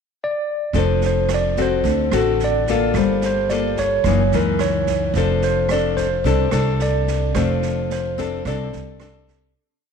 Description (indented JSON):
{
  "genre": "bossa nova",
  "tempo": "109 BPM",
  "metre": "4/4",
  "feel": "straight",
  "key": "F major",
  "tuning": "A4 = 444 Hz",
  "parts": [
    { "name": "tine electric piano", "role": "melody", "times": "0.2-9.3 s", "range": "A4 to D5", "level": "-22 LUFS", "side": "right 2 dB", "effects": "medium stereo tremolo, slapback echo" },
    { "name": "nylon-string guitar", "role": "accompaniment", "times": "0.7-9.5 s", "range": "Gb2 to A4", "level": "-21 LUFS", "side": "left 8 dB", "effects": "none" },
    { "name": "upright bass", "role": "bass", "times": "0.7-9.5 s", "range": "F1 to D2", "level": "-22 LUFS", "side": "right 2 dB", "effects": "none" },
    { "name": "swinging big-band drum kit", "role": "drums", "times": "0.7-9.3 s", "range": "kick drum, rim click, snare drum", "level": "-30 LUFS", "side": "right 9 dB", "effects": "none" }
  ],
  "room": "moderate echo chamber reverb, RT60 2.4 s",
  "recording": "1960s-style stereo with parts hard left and right",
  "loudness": "-17 LUFS",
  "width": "side -6 dB against mid",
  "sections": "0.0-0.7 pickup bar; 0.7-9.6 A section",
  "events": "fade-out 7.4-9.6",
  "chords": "0.0 N.C.; 0.7 F6; 1.8 D7; 2.9 Gm9; 4.0 Gb6; 5.2 F6",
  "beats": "0.19 | 0.74 1.29 1.84 2.39 | 2.94 3.50 4.05 4.60 | 5.15 5.70 6.25 6.81 | 7.36 7.91 8.46 9.01"
}